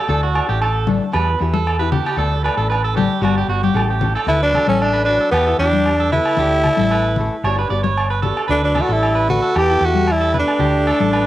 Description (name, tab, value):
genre	highlife guitar band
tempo	114 BPM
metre	4/4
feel	straight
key	D major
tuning	A4 = 437 Hz
part	electric guitar at the edge of break-up	arpeggios	0.0-11.3 s	F#4 to D5	-22 LUFS	right 6 dB	spring reverb, analog delay
part	nylon-string guitar	accompaniment	0.1-11.1 s	E3 to A4	-27 LUFS	left 6 dB	none
part	hollow-body short-scale fingered electric bass	bass	0.1-11.3 s	G1 to E2	-20 LUFS	equal	none
part	agogo bells	percussion	0.4-11.3 s	none	-25 LUFS	equal	none
part	congas	percussion	0.9-11.1 s	none	-22 LUFS	left 6 dB	none
part	growling tenor saxophone	melody	4.3-11.3 s	B3 to G4	-17 LUFS	equal	cassette tape
part	warm tenor saxophone	second line	4.3-11.3 s	E3 to B3	-29 LUFS	left 6 dB	analog delay
room	light reverb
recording	home recording on cassette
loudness	-14 LUFS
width	side -14 dB against mid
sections	0.0-4.3 A section; 4.3-11.3 B section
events	none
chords	0.1 Dsus2; 1.1 Em; 2.2 Dsus2; 3.2 G; 3.7 A; 4.3 Dsus2; 5.3 Em; 6.4 Dsus2; 7.4 G; 8.5 Dsus2; 9.5 Em; 10.6 Dsus2